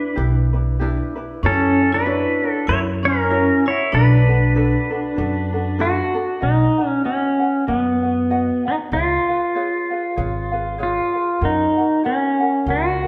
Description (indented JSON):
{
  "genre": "Hawaiian",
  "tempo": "96 BPM",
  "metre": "4/4",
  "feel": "swing 58% on 8ths",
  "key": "B minor, B major from 6.4 s",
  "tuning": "A4 = 440 Hz",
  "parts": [
    { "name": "pedal steel guitar", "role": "melody", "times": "0.0-13.1 s", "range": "B3 to C#5", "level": "-21 LUFS", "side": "equal", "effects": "none" },
    { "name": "vibraphone with medium hard mallets", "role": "second line", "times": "0.0-5.8 s", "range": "C#4 to E4", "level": "-27 LUFS", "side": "equal", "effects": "none" },
    { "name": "ukulele", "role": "accompaniment", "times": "0.0-13.1 s", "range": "D4 to F#5", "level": "-28 LUFS", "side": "equal", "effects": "none" },
    { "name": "upright bass", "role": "bass", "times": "0.2-13.1 s", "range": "G#1 to F#2", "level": "-23 LUFS", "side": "equal", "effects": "none" }
  ],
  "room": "wet stone room reverb, RT60 1.3 s",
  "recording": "band playing live in one room",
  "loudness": "-19 LUFS",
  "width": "mono",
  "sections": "0.0-6.4 A section; 6.4-13.1 B section",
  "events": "none",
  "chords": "0.0 Em7; 1.4 F#7sus4; 2.7 F#7; 3.9 Bm7; 6.4 B; 8.9 C#7; 11.4 F#"
}